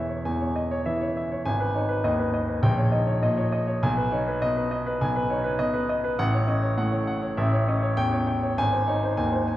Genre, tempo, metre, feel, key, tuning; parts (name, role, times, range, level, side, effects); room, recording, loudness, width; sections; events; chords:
classical, romantic character piece for solo piano; 100 BPM; 4/4; rubato; A4 = 440 Hz
warm grand piano; solo; 0.0-9.6 s; E1 to G#5; -22 LUFS; equal
wet recital hall reverb, RT60 1.7 s; heard from further back in the room; -22 LUFS; side -14 dB against mid
0.0-9.6 A section
0.0 C#m/E; 1.5 G#m; 2.6 D#7/A#; 3.8 G#m/B; 6.2 F#m/A; 7.4 A7; 8.6 G#